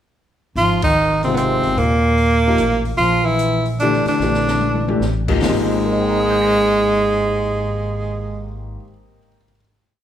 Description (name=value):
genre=modal jazz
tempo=148 BPM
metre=3/4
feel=swing 65% on 8ths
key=Ab major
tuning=A4 = 439 Hz
part: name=bright tenor saxophone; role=melody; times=0.6-8.6 s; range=Ab3 to F4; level=-17 LUFS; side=right 2 dB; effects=none
part: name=mellow bass clarinet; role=second line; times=0.6-8.6 s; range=Ab2 to F3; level=-25 LUFS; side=left 3 dB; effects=none
part: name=upright bass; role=bass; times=0.6-8.8 s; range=G1 to Eb2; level=-24 LUFS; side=equal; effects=none
part: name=open jazz drum kit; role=drums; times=0.6-5.6 s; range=crash cymbal, hi-hat, kick drum, ride cymbal, snare drum, toms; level=-27 LUFS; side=left 1 dB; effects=none
part: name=warm concert grand piano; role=accompaniment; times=1.3-9.6 s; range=Ab2 to Bb6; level=-22 LUFS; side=left 3 dB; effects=none
room=moderate large studio reverb, RT60 1.4 s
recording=band playing live in one room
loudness=-15 LUFS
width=side -10 dB against mid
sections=0.6-5.4 A section; 5.4-7.9 final chord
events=band accent 0.8; drum fill 4.2-5.0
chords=0.6 Abadd9; 3.0 Bbmaj7; 5.4 Abmaj9